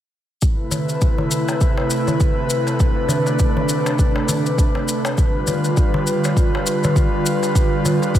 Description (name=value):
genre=organic downtempo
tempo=101 BPM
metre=4/4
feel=swing 58% on 16ths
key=A minor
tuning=A4 = 441 Hz
part: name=airy breathy pad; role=sustained chords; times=0.4-8.2 s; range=C3 to B4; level=-20 LUFS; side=equal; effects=chorus, sidechain pumping
part: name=electronic kick drum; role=drums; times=0.4-8.2 s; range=none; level=-17 LUFS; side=equal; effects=studio reverb
part: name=shaker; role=drums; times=0.4-8.2 s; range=none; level=-28 LUFS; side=left 3 dB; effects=studio reverb
part: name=darbuka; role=percussion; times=0.7-8.1 s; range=none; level=-24 LUFS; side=left 1 dB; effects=none
room=light reverb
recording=none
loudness=-16 LUFS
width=side -11 dB against mid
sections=0.4-8.2 A section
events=none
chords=0.4 Amadd9; 5.2 G7